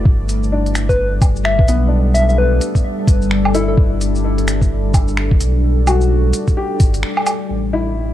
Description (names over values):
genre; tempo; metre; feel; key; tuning
future garage; 129 BPM; 4/4; swing 61% on 16ths; unclear; A4 = 440 Hz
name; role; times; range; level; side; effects
felt-muted upright piano; accompaniment; 0.0-8.1 s; B3 to G4; -25 LUFS; left 3 dB; sidechain pumping, analog delay
deep dark ambient pad; sustained chords; 0.0-8.1 s; G3 to E5; -22 LUFS; left 1 dB; chorus, built-in reverb, sidechain pumping
warm sub bass; bass; 0.0-8.1 s; G1 to B1; -17 LUFS; equal; sidechain pumping
electronic kick drum; drums; 0.1-6.9 s; none; -13 LUFS; equal; none
organic electronic drum kit; drums; 0.3-7.4 s; finger snaps, hi-hat, shaker, woodblock; -22 LUFS; right 1 dB; overdrive, low-pass filter on hats, low-pass filter on perc, low-pass filter on snare
soft struck synth lead; melody; 0.9-3.7 s; A4 to E5; -21 LUFS; left 1 dB; chorus, analog delay
room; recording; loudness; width
light reverb, digital ambience; cassette tape, lossy compression artefacts; -13 LUFS; side -12 dB against mid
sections
0.0-7.5 A section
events
break 7.0-7.5; band accent 7.0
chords
0.1 Gmaj7; 7.5 A5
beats
| 0.06 0.52 0.99 1.45 | 1.92 2.38 2.85 3.31 | 3.78 4.24 4.71 5.17 | 5.64 6.10 6.57 7.03 | 7.50 7.96